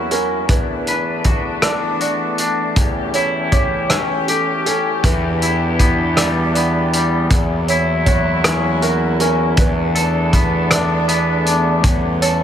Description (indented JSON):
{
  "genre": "post-rock",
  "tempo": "53 BPM (dotted quarters)",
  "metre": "6/8",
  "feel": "straight",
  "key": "unclear",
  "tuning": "A4 = 440 Hz",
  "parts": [
    { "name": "dark studio string section", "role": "sustained chords", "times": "0.0-12.4 s", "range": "E2 to G4", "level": "-24 LUFS", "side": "left 2 dB", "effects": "none" },
    { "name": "felt-muted upright piano", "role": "arpeggios", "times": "0.0-12.4 s", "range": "A4 to D5", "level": "-24 LUFS", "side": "right 6 dB", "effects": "tape echo" },
    { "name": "twangy electric guitar", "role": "arpeggios", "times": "0.0-12.4 s", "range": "E2 to B4", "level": "-20 LUFS", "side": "left 2 dB", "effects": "tape echo" },
    { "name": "loose indie drum kit", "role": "drums", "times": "0.1-12.4 s", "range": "hi-hat, kick drum, rim click", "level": "-18 LUFS", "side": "equal", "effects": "none" },
    { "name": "fuzz picked electric bass", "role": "bass", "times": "5.0-12.4 s", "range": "E2", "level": "-18 LUFS", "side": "equal", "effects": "overdrive" }
  ],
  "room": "light reverb",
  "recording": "none",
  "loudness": "-14 LUFS",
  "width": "side -9 dB against mid",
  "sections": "0.0-12.4 A section",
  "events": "none",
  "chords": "0.5 Bm7/E; 2.8 A7/E; 5.0 Em7; 7.3 F#7/E; 9.6 Bm7/E; 11.8 A7/E",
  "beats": "| 0.49 1.63 | 2.77 3.90 | 5.04 6.17 | 7.31 8.45 | 9.58 10.71 | 11.85"
}